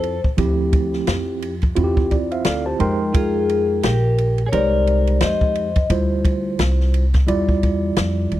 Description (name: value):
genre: hip hop, jazz-hop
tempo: 87 BPM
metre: 4/4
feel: swing 58% on 16ths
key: unclear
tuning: A4 = 440 Hz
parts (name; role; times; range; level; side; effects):
- vibraphone with soft mallets; melody; 0.0-5.9 s; Ab4 to Eb5; -21 LUFS; left 5 dB; slapback echo
- clean electric guitar; second line; 0.0-5.9 s; F4 to C5; -30 LUFS; right 5 dB; slapback echo
- mellow tine electric piano; accompaniment; 0.0-8.4 s; F3 to C6; -21 LUFS; right 2 dB; fast stereo tremolo
- upright bass; bass; 0.0-8.4 s; Bb1 to F2; -21 LUFS; equal; none
- open jazz drum kit; drums; 0.0-8.4 s; hi-hat, kick drum, ride cymbal, snare drum; -20 LUFS; equal; none
room: little or no reverb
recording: dry, close 1970s-style studio recording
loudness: -16 LUFS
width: side -14 dB against mid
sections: 0.0-8.4 A section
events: tine electric piano fill 1.8-3.1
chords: 0.0 Dm11; 2.8 Fm11; 5.9 Dm11